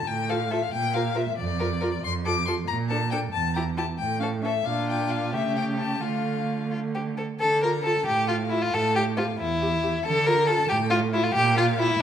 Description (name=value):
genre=quick classical-period movement for string quartet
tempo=91 BPM (dotted quarters)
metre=6/8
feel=rubato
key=D minor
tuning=A4 = 441 Hz
part: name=rich violin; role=melody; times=0.0-12.0 s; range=D5 to D6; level=-29 LUFS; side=left 8 dB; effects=none
part: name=rich cello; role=bass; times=0.1-11.9 s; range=E2 to D3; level=-28 LUFS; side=right 4 dB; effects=none
part: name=rich violin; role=second line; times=0.3-12.0 s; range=E4 to Bb4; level=-26 LUFS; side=left 2 dB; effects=none
part: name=dark viola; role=accompaniment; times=0.3-11.8 s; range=A3 to G4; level=-31 LUFS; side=right 3 dB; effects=none
room=moderate recital hall reverb, RT60 1.6 s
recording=none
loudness=-22 LUFS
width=side -9 dB against mid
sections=0.0-7.4 A section; 7.4-12.0 A section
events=none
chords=0.0 Dm (rootless); 0.7 Bb; 2.0 F; 2.7 Bbmaj7; 3.3 Emadd11; 4.0 A; 4.7 Bb; 5.3 A7/C#; 6.0 Dm; 8.7 A5; 10.1 Dm; 11.4 Bb5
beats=0.07 | 0.72 1.37 | 2.03 2.69 | 3.33 4.00 | 4.66 5.34 | 6.03 6.72 | 7.41 8.07 | 8.74 9.39 | 10.05 10.70 | 11.35 12.01